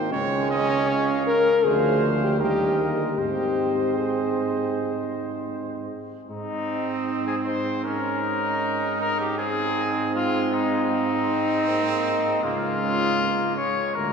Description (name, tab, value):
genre	classical, brass quintet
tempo	78 BPM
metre	4/4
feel	straight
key	Ab major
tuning	A4 = 440 Hz
part	mellow trumpet	melody	0.0-14.1 s	Eb4 to G5	-27 LUFS	left 4 dB	none
part	clear trumpet	second line	0.0-14.1 s	Ab3 to Eb5	-31 LUFS	right 5 dB	none
part	mellow French horn	accompaniment	0.0-14.1 s	Bb3 to Bb4	-26 LUFS	left 2 dB	none
part	mellow trombone	accompaniment	0.0-14.1 s	F3 to Db4	-30 LUFS	right 4 dB	none
part	clear tuba	bass	0.0-14.1 s	Ab1 to Ab2	-30 LUFS	right 3 dB	none
room	wet cathedral reverb, RT60 5.1 s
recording	heard from further back in the room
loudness	-21 LUFS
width	side -6 dB against mid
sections	0.0-6.3 A section; 6.3-14.1 B section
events	none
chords	0.1 Db; 1.6 Dm7b5; 2.4 Eb; 3.2 Ab; 7.8 Eb5/Ab; 9.4 Ab; 12.4 Db